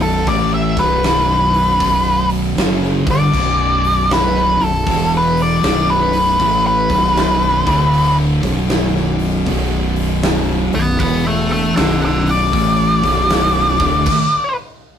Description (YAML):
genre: stoner and doom metal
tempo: 78 BPM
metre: 4/4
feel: swing 65% on 8ths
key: B minor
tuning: A4 = 440 Hz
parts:
  - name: octave-fuzz lead guitar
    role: melody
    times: 0.0-14.6 s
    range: A4 to B5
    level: -16 LUFS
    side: left 1 dB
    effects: distortion
  - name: thick fuzz guitar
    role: riff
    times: 0.0-14.1 s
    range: B1 to A3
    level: -21 LUFS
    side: left 6 dB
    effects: distortion
  - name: thick fuzz guitar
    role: riff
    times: 0.0-14.1 s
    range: B1 to A3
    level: -21 LUFS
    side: right 6 dB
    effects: distortion
  - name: growling fingered electric bass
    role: bass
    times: 0.0-14.1 s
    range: B0 to A1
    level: -20 LUFS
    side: equal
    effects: overdrive
  - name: big rock drum kit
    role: drums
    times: 0.0-14.3 s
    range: crash cymbal, hi-hat, kick drum, snare drum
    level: -22 LUFS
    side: equal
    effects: none
room: moderate studio reverb, RT60 0.6 s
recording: rough rehearsal-room recording, warm saturation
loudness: -13 LUFS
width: side -8 dB against mid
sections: 0.0-15.0 A section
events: lead electric guitar solo 0.0-15.0; stop 14.1-15.0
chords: 0.0 Bm; 4.9 E5; 5.6 B5; 7.6 D5; 8.3 B5; 11.0 E5; 11.8 Bm; 13.7 D5; 14.5 N.C.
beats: | 0.28 1.05 1.81 2.58 | 3.34 4.11 4.87 5.64 | 6.40 7.17 7.93 8.70 | 9.47 10.23 11.00 11.77 | 12.54 13.30 14.07